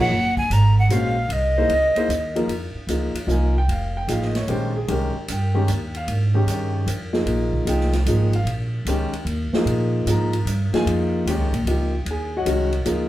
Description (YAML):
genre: modal jazz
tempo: 150 BPM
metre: 3/4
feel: swing 66% on 8ths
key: F minor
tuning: A4 = 440 Hz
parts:
  - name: breathy bright jazz flute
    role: melody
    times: 0.0-2.4 s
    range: D#5 to Bb5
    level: -21 LUFS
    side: equal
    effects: plate reverb
  - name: warm grand piano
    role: accompaniment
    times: 0.0-13.1 s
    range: Eb3 to Bb5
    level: -23 LUFS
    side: left 1 dB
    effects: none
  - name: upright bass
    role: bass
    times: 0.0-13.1 s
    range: F1 to Bb2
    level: -22 LUFS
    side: right 1 dB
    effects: none
  - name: swinging big-band drum kit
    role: drums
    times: 0.4-13.0 s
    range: hi-hat, kick drum, ride cymbal, snare drum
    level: -31 LUFS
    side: right 1 dB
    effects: none
room: wet club reverb, RT60 0.5 s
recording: heard from further back in the room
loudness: -19 LUFS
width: side -14 dB against mid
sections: 0.0-2.5 A section; 2.5-12.1 B section; 12.1-13.1 B section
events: none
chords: 0.0 Ebm9 (rootless); 1.3 C7alt; 2.5 Fm11; 7.3 Bbm11; 12.1 Ebm9